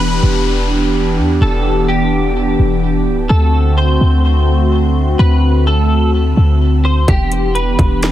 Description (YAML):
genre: hip hop, atmospheric cloud-rap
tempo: 127 BPM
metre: 4/4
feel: half-time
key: E minor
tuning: A4 = 437 Hz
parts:
  - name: clean electric guitar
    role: melody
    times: 0.0-8.0 s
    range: G4 to C5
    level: -21 LUFS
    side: equal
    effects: ensemble chorus, digital delay
  - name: hollow soft pad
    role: sustained chords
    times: 0.0-8.1 s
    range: D3 to G4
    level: -16 LUFS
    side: equal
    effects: chorus, sidechain pumping
  - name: clean 808-style bass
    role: bass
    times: 0.0-8.1 s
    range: D1 to E2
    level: -13 LUFS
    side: equal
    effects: none
  - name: downlifter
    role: sound effects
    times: 0.0-3.3 s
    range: none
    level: -27 LUFS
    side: left 2 dB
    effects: none
  - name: trap drum kit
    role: drums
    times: 7.1-8.1 s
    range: hi-hat, kick drum, snare drum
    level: -14 LUFS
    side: equal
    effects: none
room: little or no reverb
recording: heavily compressed radio sound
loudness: -11 LUFS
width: side -13 dB against mid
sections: 0.0-8.1 A section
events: none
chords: 0.0 Em7; 3.3 D7; 7.1 Em7